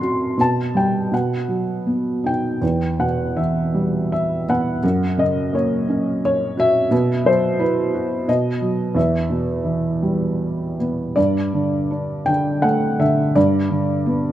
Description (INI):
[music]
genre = classical, lyrical solo piano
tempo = 76-89 BPM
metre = 3/4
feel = rubato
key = E minor, G major from 11.2 s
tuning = A4 = 439 Hz
[part]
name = felt-muted upright piano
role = solo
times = 0.0-14.3 s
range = E2 to C6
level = -17 LUFS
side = equal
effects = none
[sound]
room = light reverb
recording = close, detailed microphones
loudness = -17 LUFS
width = side -12 dB against mid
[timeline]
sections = 0.0-11.2 A section; 11.2-14.3 B section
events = felt piano fill 14.1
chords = 0.4 Gadd9/B; 1.1 B; 2.6 Em; 4.8 F#; 6.9 Bsus4; 8.3 B; 9.0 Em; 11.2 Gsus2; 13.4 G